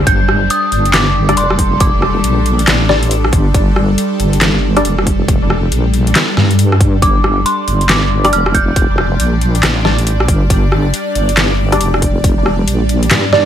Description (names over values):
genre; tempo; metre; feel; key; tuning
deep dubstep; 138 BPM; 4/4; swing 62% on 16ths, half-time; G minor; A4 = 440 Hz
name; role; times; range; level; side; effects
bowed-like drone; sustained chords; 0.0-13.5 s; G3 to D5; -19 LUFS; equal; built-in reverb, phaser
deep soft wobble bass; bass; 0.0-13.5 s; F1 to G2; -14 LUFS; equal; chorus, tube saturation
dark detuned synth bell; melody; 0.1-3.3, 7.0-9.4 s; C6 to G6; -18 LUFS; right 1 dB; chorus, dub echo
dubstep drum kit; drums; 0.1-13.4 s; handclaps, hi-hat, rim click, snare drum; -15 LUFS; left 1 dB; overdrive
electronic kick drum; drums; 0.1-12.3 s; none; -14 LUFS; equal; overdrive
filtered dub chord stab; stabs; 1.3-4.9, 8.2-13.5 s; G3 to D5; -18 LUFS; equal; phaser, analog chorus, dub echo
room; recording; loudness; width
light reverb, digital ambience; none; -10 LUFS; side -10 dB against mid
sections
0.0-13.5 A section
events
none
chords
0.0 G5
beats
| 0.07 0.50 0.94 1.37 | 1.81 2.24 2.67 3.11 | 3.54 3.98 4.41 4.85 | 5.28 5.72 6.15 6.59 | 7.02 7.46 7.89 8.33 | 8.76 9.20 9.63 10.07 | 10.50 10.94 11.37 11.81 | 12.24 12.68 13.11